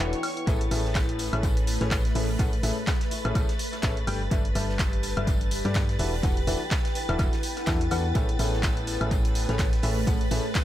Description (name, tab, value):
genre	piano house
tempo	125 BPM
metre	4/4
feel	swing 57% on 16ths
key	A major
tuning	A4 = 441 Hz
part	string machine, violins	sustained chords	0.0-10.6 s	B4 to A6	-36 LUFS	left 1 dB	ensemble chorus, vintage 12-bit sampler grit, sidechain pumping
part	bright upright piano	riff	0.0-10.4 s	A2 to G5	-32 LUFS	left 2 dB	sidechain pumping, analog delay
part	solid FM bass	bass	0.0-10.4 s	E1 to G2	-28 LUFS	equal	sidechain pumping
part	deep dark ambient pad	texture	0.0-10.6 s	A3 to C#6	-35 LUFS	equal	chorus, built-in reverb, sidechain pumping
part	punchy analog drum machine	drums	0.1-10.6 s	handclaps, hi-hat, woodblock	-33 LUFS	equal	analog delay
part	big rock drum kit	drums	0.5-10.6 s	hi-hat, snare drum, tambourine	-41 LUFS	left 1 dB	sidechain pumping on hats, high-pass filter on hats, high-pass filter on snare, sidechain pumping on perc, high-pass filter on perc, high-pass filter on room, analog delay
part	electronic kick drum	drums	0.5-10.6 s	none	-26 LUFS	equal	none
room	light reverb, small room ambience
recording	echo-heavy mix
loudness	-23 LUFS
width	side -13 dB against mid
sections	0.0-10.6 A section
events	break 0.0-0.5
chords	0.5 Amaj9; 4.1 G69; 6.0 E9sus4; 8.2 Amaj9